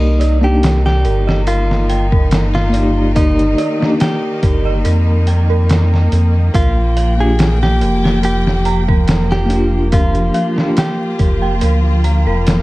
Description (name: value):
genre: trip hop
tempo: 71 BPM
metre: 4/4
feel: swing 54% on 16ths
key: C minor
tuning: A4 = 435 Hz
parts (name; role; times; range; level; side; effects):
- direct-recorded clean electric guitar; melody; 0.0-11.5 s; Eb4 to Ab4; -21 LUFS; equal; vintage 12-bit sampler grit, tape echo
- bell-like tine electric piano; accompaniment; 0.0-10.8 s; Bb3 to D5; -19 LUFS; left 1 dB; tremolo, tape echo
- bright studio string section; sustained chords; 0.0-12.6 s; Eb3 to G5; -21 LUFS; left 1 dB; none
- dark detuned synth bell; arpeggios; 0.0-12.6 s; Bb4 to Bb5; -24 LUFS; right 4 dB; chorus, phaser, tape echo
- round analog bass; bass; 0.0-12.6 s; F1 to F2; -14 LUFS; equal; tube saturation
- trip hop sampler-style drum kit; drums; 0.2-12.6 s; hi-hat, kick drum, snare drum; -16 LUFS; equal; vintage 12-bit sampler grit
room: digital ambience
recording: vinyl crackle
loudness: -12 LUFS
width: side -19 dB against mid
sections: 0.0-12.6 A section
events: none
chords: 0.0 Cm9; 6.5 Gm7